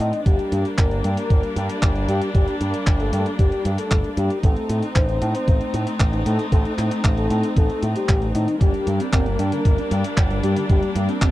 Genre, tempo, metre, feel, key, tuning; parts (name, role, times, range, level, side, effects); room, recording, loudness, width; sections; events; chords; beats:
italo disco; 115 BPM; 4/4; straight; G minor; A4 = 437 Hz
soft octave-layered synth lead; melody; 0.0-10.9 s; Eb4 to Eb5; -26 LUFS; left 2 dB; chorus, tremolo, tape echo
rich studio string section; sustained chords; 0.0-11.3 s; G3 to Eb4; -26 LUFS; left 1 dB
picked electric bass with an envelope filter; bass; 0.0-11.3 s; G1 to A2; -23 LUFS; equal; tube saturation
clean 12-bit digital drum machine; drums; 0.0-11.3 s; handclaps, hi-hat; -28 LUFS; equal
electronic kick drum; drums; 0.3-11.3 s; -18 LUFS; equal
mellow electric guitar; arpeggios; 8.6-11.3 s; G2 to G4; -28 LUFS; equal; tape echo
little or no reverb; dry, close 1970s-style studio recording; -18 LUFS; side -16 dB against mid
0.0-11.3 A section
0.3 Gm; 4.4 Adim; 8.6 Gm
| 0.26 0.78 1.30 1.82 | 2.35 2.87 3.39 3.91 | 4.43 4.96 5.48 6.00 | 6.52 7.04 7.56 8.09 | 8.61 9.13 9.65 10.17 | 10.69 11.22